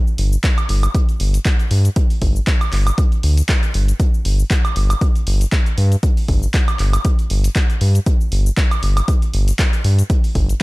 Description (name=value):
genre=deep house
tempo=118 BPM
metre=4/4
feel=swing 56% on 16ths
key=unclear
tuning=A4 = 441 Hz
part: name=punchy analog drum machine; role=drums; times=0.1-10.6 s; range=handclaps, hi-hat, shaker, woodblock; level=-24 LUFS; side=right 1 dB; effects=overdrive
part: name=round analog bass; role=bass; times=0.2-10.5 s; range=G1 to G2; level=-15 LUFS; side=equal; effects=sidechain pumping
part: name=electronic kick drum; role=drums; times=0.4-10.5 s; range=none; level=-16 LUFS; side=equal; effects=overdrive
room=little or no reverb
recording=dark, warm production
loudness=-14 LUFS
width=side -22 dB against mid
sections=0.0-10.6 A section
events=none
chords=none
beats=0.44 0.95 1.46 | 1.96 2.47 2.98 3.49 | 4.00 4.51 5.01 5.52 | 6.03 6.54 7.05 7.56 | 8.06 8.57 9.08 9.59 | 10.10